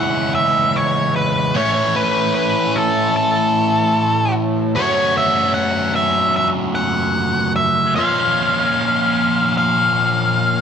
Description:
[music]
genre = rock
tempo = 75 BPM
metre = 4/4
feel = straight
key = F# minor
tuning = A4 = 440 Hz
[part]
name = octave-fuzz lead guitar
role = melody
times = 0.0-10.6 s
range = A4 to F#5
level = -17 LUFS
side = equal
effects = distortion, analog delay
[part]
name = overdriven electric guitar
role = riff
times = 0.0-10.6 s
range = F#2 to F#4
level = -18 LUFS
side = equal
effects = phaser
[sound]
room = moderate large studio reverb, RT60 1.2 s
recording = band playing live in one room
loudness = -15 LUFS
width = side -7 dB against mid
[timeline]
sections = 0.0-10.6 A section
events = none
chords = 0.0 C#m; 1.6 A; 4.8 F#m; 8.0 A#m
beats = 0.76 | 1.56 2.37 3.17 3.97 | 4.77 5.57 6.36 7.16 | 7.96 8.76 9.55 10.35

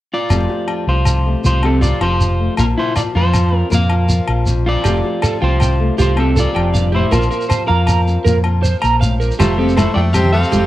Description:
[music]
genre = highlife guitar band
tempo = 106 BPM (dotted quarters)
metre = 12/8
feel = straight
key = F major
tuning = A4 = 440 Hz
[part]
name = electric guitar at the edge of break-up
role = melody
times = 0.1-10.7 s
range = C4 to F5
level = -19 LUFS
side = equal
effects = spring reverb
[part]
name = flamenco guitar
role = accompaniment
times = 0.3-10.7 s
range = F2 to G4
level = -23 LUFS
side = left 5 dB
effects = none
[part]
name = fingered electric bass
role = bass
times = 0.3-10.7 s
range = F1 to F2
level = -16 LUFS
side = equal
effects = none
[part]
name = agogo bells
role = percussion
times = 0.3-10.3 s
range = none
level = -26 LUFS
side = left 4 dB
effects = none
[part]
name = shekere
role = percussion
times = 0.3-10.6 s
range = none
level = -19 LUFS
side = right 1 dB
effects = none
[part]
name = electric guitar at the edge of break-up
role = arpeggios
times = 4.8-10.7 s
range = G4 to Bb5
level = -21 LUFS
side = right 6 dB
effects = analog chorus
[part]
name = raspy tenor saxophone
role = second line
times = 9.4-10.7 s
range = F3 to C4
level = -23 LUFS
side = left 3 dB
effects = none
[part]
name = congas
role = percussion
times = 9.4-10.6 s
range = none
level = -19 LUFS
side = equal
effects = none
[sound]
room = small room ambience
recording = dry, close 1970s-style studio recording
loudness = -13 LUFS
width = side -14 dB against mid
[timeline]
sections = 0.3-9.4 A section; 9.4-10.7 B section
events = none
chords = 0.3 Fadd9; 2.6 Bbsus2; 4.8 Fadd9; 7.1 Bbsus2; 9.4 Fadd9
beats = | 0.30 0.87 1.44 2.00 | 2.57 3.14 3.71 4.28 | 4.85 5.42 5.98 6.55 | 7.12 7.69 8.26 8.82 | 9.39 9.96 10.52

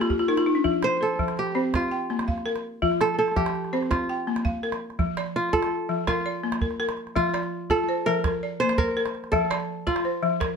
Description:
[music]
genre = west african traditional, West African string and xylophone music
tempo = 111 BPM (dotted quarters)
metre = 12/8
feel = straight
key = F major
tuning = A4 = 436 Hz
[part]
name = balafon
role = arpeggios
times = 0.0-10.6 s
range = F3 to G5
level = -25 LUFS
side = left 2 dB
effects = none
[part]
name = calabash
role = percussion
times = 0.0-10.5 s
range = none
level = -30 LUFS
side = right 3 dB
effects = none
[part]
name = kora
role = melody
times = 0.8-10.6 s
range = F4 to C5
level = -26 LUFS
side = right 2 dB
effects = slapback echo
[sound]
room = moderate studio reverb, RT60 0.6 s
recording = dark, warm production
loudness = -23 LUFS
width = side -6 dB against mid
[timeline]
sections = 0.0-5.0 A section; 5.0-10.6 B section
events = balafon fill 0.0-0.7; kora solo 5.0-10.6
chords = 0.0 N.C.; 0.7 F; 1.7 Bb5; 2.8 F; 3.9 Bb5; 5.0 F; 6.1 Bb; 7.2 F; 8.2 Bb; 9.3 F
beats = 0.11 | 0.65 1.19 1.74 2.28 | 2.82 3.37 3.91 4.45 | 4.99 5.54 6.08 6.62 | 7.16 7.70 8.24 8.79 | 9.33 9.87 10.41

